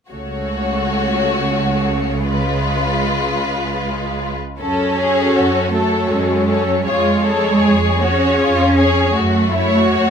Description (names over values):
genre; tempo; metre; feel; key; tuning
classical, slow romantic movement for string orchestra; 80 BPM; 3/4; uneven beats, rubato; F# minor; A4 = 440 Hz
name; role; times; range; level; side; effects
warm symphonic violin section; melody; 0.1-10.1 s; B4 to C#5; -24 LUFS; left 5 dB; none
warm symphonic violin section; second line; 0.1-10.1 s; C#4 to A4; -21 LUFS; left 4 dB; none
rich symphonic viola section; accompaniment; 0.1-10.1 s; G#3 to C#5; -22 LUFS; equal; none
rich symphonic cello section; bass; 0.1-10.1 s; C#3 to C#4; -19 LUFS; right 2 dB; none
rich symphonic double bass section; bass; 0.1-10.1 s; C#2 to F#2; -22 LUFS; right 3 dB; none
room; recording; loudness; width
light reverb; close, detailed microphones; -14 LUFS; side -7 dB against mid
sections
0.1-4.6 A section; 4.6-10.1 B section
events
none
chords
0.1 F#m/C#; 2.3 C#7; 4.6 F#m; 6.9 C#/E#; 9.2 F#m